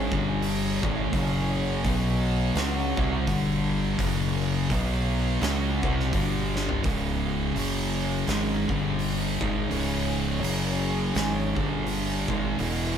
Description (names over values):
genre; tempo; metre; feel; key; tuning
stoner and doom metal; 84 BPM; 4/4; swing 58% on 8ths; unclear; A4 = 440 Hz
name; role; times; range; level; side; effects
analog drone; sustained chords; 0.0-13.0 s; C#4 to C#5; -36 LUFS; left 1 dB; chorus
thick fuzz guitar; riff; 0.0-13.0 s; C#2 to C#4; -29 LUFS; left 8 dB; distortion
thick fuzz guitar; riff; 0.0-13.0 s; C#2 to C#4; -28 LUFS; right 6 dB; distortion
growling fingered electric bass; bass; 0.0-13.0 s; C#1 to C#2; -31 LUFS; equal; overdrive
oversized low-tuned drum kit; drums; 0.1-12.8 s; hi-hat, kick drum, snare drum, toms; -32 LUFS; equal; none
room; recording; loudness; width
light reverb; band playing live in one room; -24 LUFS; side -8 dB against mid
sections
0.0-6.8 A section; 6.8-13.0 B section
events
drum fill 6.5-6.8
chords
0.1 G5; 0.8 C#5; 1.1 F#5; 1.8 B5; 2.6 F#5; 3.3 G5; 4.0 F#5; 4.7 B5; 5.4 F#5; 6.1 G5; 6.8 C#5; 7.6 F#5; 8.3 C#5; 8.6 G5; 9.4 C#5; 10.4 F#5; 11.2 C#5; 11.5 G5; 12.2 C#5